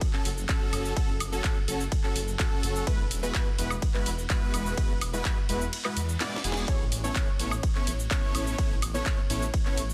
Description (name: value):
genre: EDM, festival progressive house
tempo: 126 BPM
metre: 4/4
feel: straight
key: A major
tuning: A4 = 437 Hz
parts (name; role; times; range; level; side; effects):
- electronic kick drum; drums; 0.0-9.6 s; none; -30 LUFS; equal; none
- house drum kit; drums; 0.0-9.9 s; handclaps, hi-hat, ride cymbal, shaker, snare drum, woodblock; -36 LUFS; equal; none
- unison lead; arpeggios; 0.1-9.8 s; G#4 to D5; -39 LUFS; equal; sidechain pumping, tape echo
- dense compressed supersaw; riff; 0.1-9.8 s; G#3 to D5; -37 LUFS; equal; sidechain pumping, tape echo
- detuned saw bass; bass; 0.3-9.9 s; E1 to E2; -35 LUFS; equal; sidechain pumping
- reverse cymbal; sound effects; 6.1-6.7 s; none; -44 LUFS; equal; none
room: little or no reverb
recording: dense, heavily limited modern master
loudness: -28 LUFS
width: mono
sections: 0.0-9.9 A section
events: kick drops out 5.7-6.7; reverse cymbal 6.1-6.7; drum fill 6.2-6.7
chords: 0.0 F#m; 2.9 Eadd9; 6.7 Aadd9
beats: 0.01 0.49 | 0.97 1.44 1.92 2.40 | 2.87 3.35 3.82 4.30 | 4.78 5.25 5.73 6.20 | 6.68 7.16 7.63 8.11 | 8.59 9.06 9.54